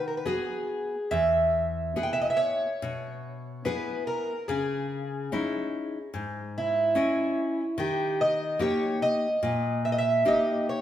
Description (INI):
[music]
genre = fado-style ballad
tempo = 72 BPM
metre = 4/4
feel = rubato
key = unclear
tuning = A4 = 440 Hz
[part]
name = fingerpicked twelve-string acoustic guitar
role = melody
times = 0.0-10.8 s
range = E4 to G5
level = -26 LUFS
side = right 1 dB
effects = none
[part]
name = nylon-string guitar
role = accompaniment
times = 0.0-10.8 s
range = E2 to D#5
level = -30 LUFS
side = left 2 dB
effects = none
[sound]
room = wet stone room reverb, RT60 1.4 s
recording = band playing live in one room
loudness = -25 LUFS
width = side -11 dB against mid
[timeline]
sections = 0.0-1.1 A section; 1.1-10.8 B section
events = none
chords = 0.0 G#m7; 1.1 E; 4.5 C#madd9; 7.8 D#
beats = 0.25 | 1.11 1.96 2.81 3.65 | 4.47 5.30 6.12 6.95 | 7.76 8.59 9.41 10.24